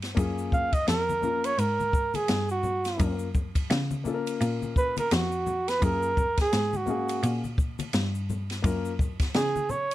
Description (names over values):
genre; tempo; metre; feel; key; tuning
hip hop, jazz-hop; 85 BPM; 4/4; swing 59% on 16ths; F# major; A4 = 440 Hz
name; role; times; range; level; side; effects
clear cello; bass; 0.0-9.9 s; E#2-21c to C#3; -31 LUFS; equal; none
open jazz drum kit; drums; 0.0-9.9 s; hi-hat, kick drum, ride cymbal, snare drum; -28 LUFS; left 1 dB; none
egg shaker and congas; percussion; 0.0-9.9 s; none; -38 LUFS; left 6 dB; none
dark concert grand piano; accompaniment; 0.1-8.9 s; A#3 to E#5; -32 LUFS; left 6 dB; none
breathy flugelhorn; melody; 0.5-9.9 s; F#4 to E#5; -27 LUFS; right 2 dB; none
room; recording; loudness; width
light reverb; none; -24 LUFS; side -14 dB against mid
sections
0.0-9.9 A section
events
flugelhorn solo 0.0-9.9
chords
0.2 F#maj9